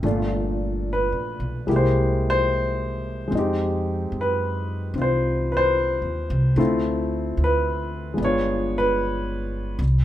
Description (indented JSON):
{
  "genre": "jazz ballad",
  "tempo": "74 BPM",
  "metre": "4/4",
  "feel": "swing 68% on 8ths",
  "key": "unclear",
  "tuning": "A4 = 437 Hz",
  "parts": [
    { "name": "warm grand piano", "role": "accompaniment", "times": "0.0-9.8 s", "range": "Bb2 to Db5", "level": "-22 LUFS", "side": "left 1 dB", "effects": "none" },
    { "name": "upright bass", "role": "bass", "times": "0.0-10.0 s", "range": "G1 to Gb2", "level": "-25 LUFS", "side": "equal", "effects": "none" }
  ],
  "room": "moderate large studio reverb, RT60 1.5 s",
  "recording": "minimal, uncompressed stereo recording",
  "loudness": "-21 LUFS",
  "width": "side -12 dB against mid",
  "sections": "0.0-10.0 A section",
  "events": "none",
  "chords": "0.0 Gm7; 1.7 C7b13; 3.3 Fm7; 6.6 Dm9; 8.2 G7b9"
}